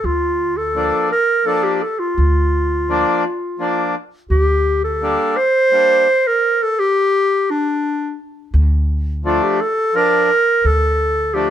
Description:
klezmer; 85 BPM; 3/4; straight; D minor; A4 = 442 Hz
mellow clarinet; melody; 0.0-11.5 s; D4 to C5; -15 LUFS; equal; plate reverb
upright bass; bass; 0.0-5.1, 8.5-11.5 s; D2; -18 LUFS; equal
accordion; accompaniment; 0.7-11.5 s; F3 to D4; -19 LUFS; left 2 dB
light reverb; close, detailed microphones; -14 LUFS; side -10 dB against mid
0.0-8.5 A section; 8.5-11.5 B section
stop 6.4-8.5
0.0 Bb/D; 4.3 Gm/D; 6.4 N.C.; 8.5 Dm

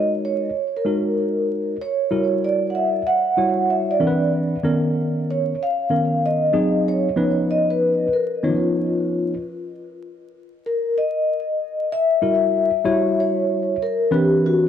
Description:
hip hop; 95 BPM; 4/4; swing 63% on 16ths; F# major; A4 = 436 Hz
vibraphone with soft mallets; melody; 0.0-14.7 s; E#4 to F#5; -20 LUFS; left 1 dB; tape echo
mellow tine electric piano; accompaniment; 0.0-14.7 s; D#3 to C#5; -21 LUFS; equal; medium stereo tremolo
wet spring reverb, RT60 1.7 s, small room ambience; echo-heavy mix, vinyl crackle; -18 LUFS; side -9 dB against mid
0.0-9.7 A section; 9.7-14.7 B section
break 9.7-12.2; vibraphone solo 9.7-14.7
0.0 F#69; 2.1 F#7b9; 4.0 Cmaj9; 4.7 Bmaj9; 6.5 G#7; 7.2 C#9; 9.7 N.C.; 12.2 F#7b9; 14.1 Cmaj9

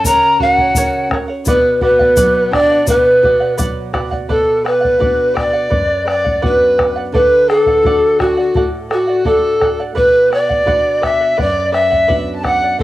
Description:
andean folk, Andean ensemble; 85 BPM; 2/4; straight; B harmonic minor, B minor from 4.3 s; A4 = 440 Hz
polished pan flute; melody; 0.0-12.8 s; F#4 to A#5; -12 LUFS; equal; cassette tape, plate reverb
warm fiddle; second line; 0.0-12.8 s; B3 to A5; -24 LUFS; right 2 dB; cassette tape, plate reverb
charango; accompaniment; 0.0-12.8 s; A4 to F#5; -23 LUFS; right 3 dB; cassette tape, plate reverb
nylon-string guitar; accompaniment; 0.0-12.8 s; F#2 to F#4; -24 LUFS; right 2 dB; cassette tape, plate reverb
bombo; percussion; 0.0-12.8 s; -20 LUFS; left 1 dB
tube shaker; percussion; 0.1-3.8 s; -24 LUFS; left 4 dB
moderate small room reverb, RT60 0.5 s; home recording on cassette; -11 LUFS; side -16 dB against mid
0.0-4.3 A section; 4.3-12.8 B section
0.0 F#; 1.5 Bm; 7.1 D; 10.0 Bm

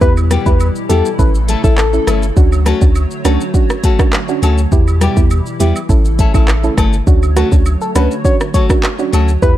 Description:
dancehall; 102 BPM; 4/4; straight; D major; A4 = 441 Hz
soft struck synth lead; melody; 0.0-2.2, 7.4-9.5 s; F#4 to C#5; -18 LUFS; left 2 dB; chorus
soft round pluck; accompaniment; 0.0-9.6 s; B3 to A4; -20 LUFS; right 7 dB; chorus
hollow soft pad; sustained chords; 0.0-9.6 s; B2 to C#5; -24 LUFS; equal; ensemble chorus, sidechain pumping
punchy sub bass; bass; 0.0-9.6 s; G1 to E2; -13 LUFS; equal
afro-pop drum kit; drums; 0.0-9.6 s; handclaps, hi-hat, kick drum, rim click, shaker; -13 LUFS; equal
woodblock and cabasa; percussion; 0.2-9.3 s; -30 LUFS; right 8 dB
nylon-string guitar; arpeggios; 0.3-9.3 s; G3 to A4; -20 LUFS; left 5 dB
little or no reverb; dark, warm production; -10 LUFS; side -13 dB against mid
0.0-9.6 A section
0.0 Em; 1.2 A; 2.4 Dmaj7; 4.7 Em; 5.9 A; 7.1 Dmaj7

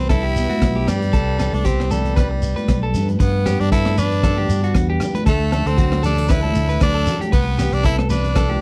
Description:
highlife guitar band; 116 BPM; 4/4; swing 55% on 16ths; G major; A4 = 438 Hz
growling tenor saxophone; melody; 0.0-8.6 s; G3 to E4; -26 LUFS; equal
picked steel-string acoustic guitar; accompaniment; 0.0-8.6 s; G2 to B4; -30 LUFS; equal
electric guitar at the edge of break-up; arpeggios; 0.0-8.6 s; F#4 to B4; -29 LUFS; equal; warbly pitch drift, slapback echo
fingered electric bass; bass; 0.0-8.6 s; B1 to G2; -22 LUFS; equal
crunchy breakbeat drum kit; drums; 0.1-8.5 s; hi-hat, kick drum, rim click; -22 LUFS; equal
congas; percussion; 0.1-8.6 s; -30 LUFS; equal
shekere; percussion; 0.1-8.5 s; -33 LUFS; equal
little or no reverb; dry, close 1970s-style studio recording; -18 LUFS; mono
0.0-3.2 A section; 3.2-8.6 B section
0.0 Cmaj7; 3.2 G; 5.3 D; 7.3 Cmaj7

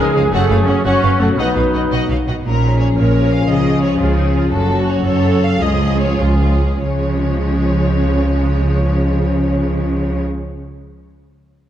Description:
cinematic, heroic adventure film score; 91-117 BPM (dotted quarters); 6/8; straight; Db mixolydian; A4 = 441 Hz
warm symphonic violin section; melody; 0.0-10.2 s; Ab4 to Gb5; -25 LUFS; left 1 dB
clear cor anglais; second line; 0.0-2.2 s; Eb4 to Bb4; -24 LUFS; right 2 dB
small flute group; second line; 0.0-1.9 s; Ab4 to Db5; -24 LUFS; right 2 dB
warm studio violin section; second line; 0.0-10.2 s; Db4 to Eb5; -26 LUFS; left 2 dB
clear symphonic viola section; accompaniment; 0.0-10.2 s; F3 to Bb4; -23 LUFS; right 1 dB
mellow French horn section; sustained chords; 0.0-10.2 s; F3 to Eb4; -20 LUFS; left 3 dB
concert harp; arpeggios; 0.0-2.4 s; Gb2 to Eb5; -28 LUFS; left 7 dB
dark trumpet section; stabs; 0.0-1.9 s; A3 to Db5; -21 LUFS; right 1 dB
rich symphonic cello section; bass; 0.0-10.2 s; Db2 to Db3; -20 LUFS; right 2 dB
rich symphonic double bass section; bass; 0.0-10.2 s; Gb1 to Db2; -18 LUFS; right 1 dB
wet scoring stage reverb, RT60 2.1 s; dark, warm production; -13 LUFS; side -11 dB against mid
0.0-2.4 A section; 2.4-6.8 B section; 6.8-9.5 C section
slowing down 4.0-6.8
0.3 Gbm; 1.4 Cb; 2.4 Bbm7; 3.5 Db; 4.5 Gbm; 5.6 Db

